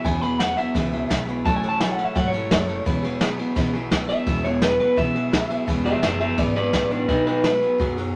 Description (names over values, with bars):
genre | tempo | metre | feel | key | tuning
rockabilly | 170 BPM | 4/4 | straight | E major | A4 = 440 Hz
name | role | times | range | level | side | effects
electric guitar through a small old amp | melody | 0.0-7.8 s | D4 to B5 | -26 LUFS | equal | none
picked steel-string acoustic guitar | accompaniment | 0.0-8.1 s | C#3 to C#5 | -31 LUFS | equal | none
electric guitar through a small old amp | riff | 0.0-8.1 s | E2 to G#3 | -30 LUFS | equal | none
jazz brush drum kit | drums | 0.0-8.1 s | kick drum, ride cymbal, snare drum | -27 LUFS | equal | none
upright bass | bass | 0.1-8.2 s | E1 to F#2 | -34 LUFS | equal | none
room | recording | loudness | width
wet studio reverb, RT60 0.6 s | none | -22 LUFS | mono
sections
0.0-8.2 A section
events
clean electric guitar solo 0.0-8.2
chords
0.0 E6; 1.5 A6; 2.9 E6; 7.1 B6